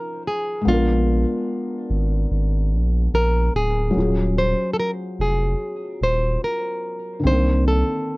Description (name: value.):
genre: hip hop.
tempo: 73 BPM.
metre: 4/4.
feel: swing 62% on 16ths.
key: unclear.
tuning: A4 = 440 Hz.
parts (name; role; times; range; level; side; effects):
nylon-string guitar; melody; 0.0-8.2 s; F4 to C5; -24 LUFS; equal; low-pass filter.
felt-muted upright piano; accompaniment; 0.0-8.2 s; D3 to C5; -25 LUFS; left 1 dB; cassette tape, low-pass filter.
saturated sub bass; bass; 0.7-7.8 s; D1 to C2; -20 LUFS; equal; none.
room: little or no reverb.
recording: cassette tape.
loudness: -19 LUFS.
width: side -23 dB against mid.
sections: 0.0-8.2 A section.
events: none.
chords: 0.0 Dbmaj9; 0.7 Bb7b9; 4.0 Ebm11; 7.2 Cm9.